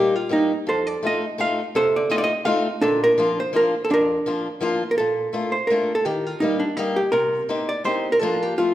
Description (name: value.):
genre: musette.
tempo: 167 BPM.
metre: 3/4.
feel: swing 55% on 8ths.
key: Bb major.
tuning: A4 = 440 Hz.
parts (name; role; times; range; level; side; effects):
archtop guitar, miked and amplified; melody; 0.0-8.7 s; D4 to F5; -20 LUFS; right 1 dB; none.
picked old ladder-braced acoustic guitar; accompaniment; 0.0-8.7 s; F2 to G4; -25 LUFS; left 2 dB; none.
room: moderate recital hall reverb, RT60 1.6 s.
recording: minimal, uncompressed stereo recording.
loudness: -19 LUFS.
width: side -13 dB against mid.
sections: 0.0-5.0 A section; 5.0-8.7 B section.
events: none.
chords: 0.0 Eb; 0.7 F7; 2.8 Bb; 5.0 Bbmaj7; 6.1 Eb; 7.1 Cm7; 8.2 Bb/F.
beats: 0.31 | 0.68 1.04 1.40 | 1.76 2.12 2.47 | 2.83 3.19 3.54 | 3.90 4.26 4.63 | 4.99 5.35 5.71 | 6.07 6.43 6.79 | 7.15 7.51 7.87 | 8.23 8.60.